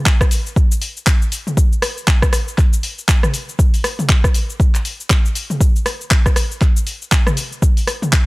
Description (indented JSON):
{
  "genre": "house",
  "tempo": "119 BPM",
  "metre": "4/4",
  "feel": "swing 59% on 16ths",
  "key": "none",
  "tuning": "none",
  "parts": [
    { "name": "deep house drum kit", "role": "drums", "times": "0.1-8.2 s", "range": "cabasa, handclaps, hi-hat, rim click, toms", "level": "-20 LUFS", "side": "left 1 dB", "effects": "overdrive" },
    { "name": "electronic kick drum", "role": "drums", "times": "0.1-8.2 s", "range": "none", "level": "-14 LUFS", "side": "equal", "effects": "overdrive" }
  ],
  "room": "little or no reverb",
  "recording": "dry, gritty hardware recording, transformer saturation",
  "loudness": "-14 LUFS",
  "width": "side -23 dB against mid",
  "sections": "0.0-8.3 A section",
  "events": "none",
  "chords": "none",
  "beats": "0.06 0.56 1.07 | 1.57 2.08 2.58 3.08 | 3.59 4.09 4.60 5.10 | 5.61 6.11 6.61 7.12 | 7.62 8.13"
}